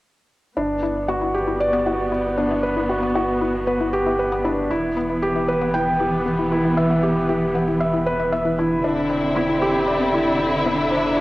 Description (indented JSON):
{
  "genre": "electronica",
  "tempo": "116 BPM",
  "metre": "4/4",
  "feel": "straight",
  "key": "unclear",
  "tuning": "A4 = 440 Hz",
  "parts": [
    { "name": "warm studio string section", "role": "sustained chords", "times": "0.6-11.2 s", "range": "D3 to E4", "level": "-23 LUFS", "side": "equal", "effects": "cassette tape" },
    { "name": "analog pluck", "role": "arpeggios", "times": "0.6-11.1 s", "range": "B3 to E5", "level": "-28 LUFS", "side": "left 4 dB", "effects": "chorus, cassette tape, analog delay" },
    { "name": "felt-muted upright piano", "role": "riff", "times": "0.6-11.2 s", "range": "D4 to G5", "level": "-21 LUFS", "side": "equal", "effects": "cassette tape" },
    { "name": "warm sub bass", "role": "bass", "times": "0.6-11.2 s", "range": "E1 to G1", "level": "-34 LUFS", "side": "equal", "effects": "none" }
  ],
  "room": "wet spring reverb, RT60 2.4 s",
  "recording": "home recording on cassette",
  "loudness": "-18 LUFS",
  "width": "side -18 dB against mid",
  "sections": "0.6-11.2 A section",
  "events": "none",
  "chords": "0.6 Gmaj7; 4.7 Em; 8.8 Cadd9/E"
}